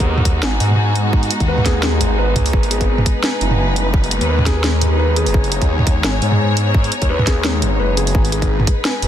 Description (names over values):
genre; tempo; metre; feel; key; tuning
half-time drum and bass; 171 BPM; 4/4; swing 56% on 16ths, half-time; G# minor; A4 = 439 Hz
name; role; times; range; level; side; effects
dark studio string section; sustained chords; 0.0-9.1 s; G#3 to C#5; -22 LUFS; equal; sidechain pumping
felt-muted upright piano; arpeggios; 0.0-9.1 s; G#3 to G#5; -23 LUFS; left 3 dB; digital delay
phased detuned saw bass; bass; 0.0-9.1 s; F#1 to G#2; -18 LUFS; equal; phaser
drum and bass drum kit; drums; 0.0-9.1 s; hi-hat, snare drum, toms; -20 LUFS; right 1 dB; none
electronic kick drum; drums; 0.0-8.8 s; none; -17 LUFS; equal; none
room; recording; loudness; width
light reverb; dense, heavily limited modern master; -14 LUFS; side -10 dB against mid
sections
0.0-9.1 A section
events
none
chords
0.0 G#m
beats
0.08 0.43 0.78 | 1.13 1.48 1.83 2.18 | 2.54 2.89 3.24 3.59 | 3.94 4.29 4.64 4.99 | 5.34 5.69 6.04 6.39 | 6.75 7.10 7.45 7.80 | 8.15 8.50 8.85